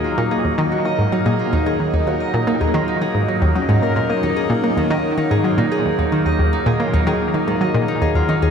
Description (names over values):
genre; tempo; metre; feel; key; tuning
ambient, sequencer-driven space music; 111 BPM; 4/4; straight; Eb minor; A4 = 440 Hz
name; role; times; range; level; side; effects
evolving wavetable pad; sustained chords; 0.0-8.5 s; Gb3 to Eb5; -21 LUFS; equal; phaser, built-in reverb, shimmer reverb
Celtic harp; arpeggios; 0.0-8.5 s; Eb3 to Eb5; -23 LUFS; moving between left 5 dB and right 3 dB; auto-pan, analog delay, shimmer reverb
analog pluck; riff; 0.0-8.5 s; Eb2 to Bb3; -19 LUFS; equal; chorus, analog delay
room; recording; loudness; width
wet concert hall reverb, RT60 2.4 s; none; -16 LUFS; side -7 dB against mid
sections
0.0-8.5 A section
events
none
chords
0.0 Ebm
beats
0.45 0.99 1.53 | 2.07 2.61 3.15 3.69 | 4.23 4.77 5.31 5.85 | 6.39 6.93 7.47 8.01